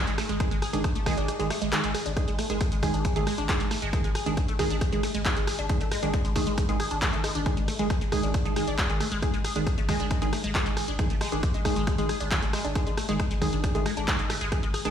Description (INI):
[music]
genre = driving peak-time techno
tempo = 136 BPM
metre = 4/4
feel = straight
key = unclear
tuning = A4 = 438 Hz
[part]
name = wavetable chord stab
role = stabs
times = 0.0-14.9 s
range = D#3 to G#4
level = -31 LUFS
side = right 2 dB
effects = sidechain pumping, ping-pong delay
[part]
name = resonant blip pluck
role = riff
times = 0.1-14.9 s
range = G#3 to G#4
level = -32 LUFS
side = left 1 dB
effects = phaser, overdrive, vintage 12-bit sampler grit, sidechain pumping, ping-pong delay
[part]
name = saturated sub bass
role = bass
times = 0.1-14.9 s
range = G#1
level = -34 LUFS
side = equal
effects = overdrive, sidechain pumping, low-pass filter
[part]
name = punchy analog drum machine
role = drums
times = 0.1-14.9 s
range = handclaps, hi-hat, rim click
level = -32 LUFS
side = equal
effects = none
[part]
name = electronic kick drum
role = drums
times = 0.4-14.6 s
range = none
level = -28 LUFS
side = equal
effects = overdrive
[sound]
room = light reverb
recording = played on a big sound system in a bare room, stone room reverb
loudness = -24 LUFS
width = side -9 dB against mid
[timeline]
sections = 0.0-14.9 A section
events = kick drops out 1.3-2.2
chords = 0.0 G#5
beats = | 0.40 0.84 1.28 1.73 | 2.17 2.61 3.05 3.49 | 3.93 4.37 4.81 5.25 | 5.70 6.14 6.58 7.02 | 7.46 7.90 8.34 8.78 | 9.22 9.67 10.11 10.55 | 10.99 11.43 11.87 12.31 | 12.75 13.20 13.64 14.08 | 14.52